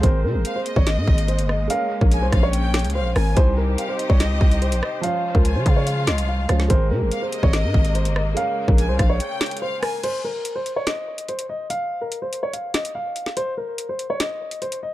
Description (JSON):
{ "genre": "hip hop, drill", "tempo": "144 BPM", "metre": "4/4", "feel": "half-time", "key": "unclear", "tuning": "A4 = 441 Hz", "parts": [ { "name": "dark baby grand piano", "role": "melody", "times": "0.0-14.9 s", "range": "Bb4 to F5", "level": "-26 LUFS", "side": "left 1 dB", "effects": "ping-pong delay" }, { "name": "felt-muted upright piano", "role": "accompaniment", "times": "0.0-10.1 s", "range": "F3 to C5", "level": "-31 LUFS", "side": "right 6 dB", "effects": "none" }, { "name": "muted studio string section", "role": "sustained chords", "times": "0.0-10.0 s", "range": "C3 to C5", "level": "-32 LUFS", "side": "left 1 dB", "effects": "none" }, { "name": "growling 808-style bass", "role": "bass", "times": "0.0-9.2 s", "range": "G1 to Db3", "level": "-21 LUFS", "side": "equal", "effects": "none" }, { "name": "drill drum kit", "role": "drums", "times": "0.0-14.8 s", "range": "crash cymbal, hi-hat, kick drum, rim click, snare drum", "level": "-20 LUFS", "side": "equal", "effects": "none" }, { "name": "warm studio violin section", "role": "second line", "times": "0.5-10.0 s", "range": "Eb5 to Ab5", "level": "-32 LUFS", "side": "left 2 dB", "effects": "ping-pong delay" } ], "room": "little or no reverb", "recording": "dark, warm production", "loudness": "-19 LUFS", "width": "side -15 dB against mid", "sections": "0.0-10.0 A section; 10.0-14.9 B section", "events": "break 9.2-10.0, 10.0-14.9", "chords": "0.0 Abadd9; 1.7 Bbm7; 3.4 Cm; 5.0 Dbmaj7; 6.7 Abadd9; 8.4 Bbm7; 10.0 N.C.", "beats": "| 0.03 0.45 0.87 1.28 | 1.70 2.12 2.53 2.95 | 3.37 3.78 4.20 4.62 | 5.03 5.45 5.87 6.28 | 6.70 7.12 7.53 7.95 | 8.37 8.78 9.20 9.62 | 10.03 10.45 10.87 11.28 | 11.70 12.12 12.53 12.95 | 13.37 13.78 14.20 14.62" }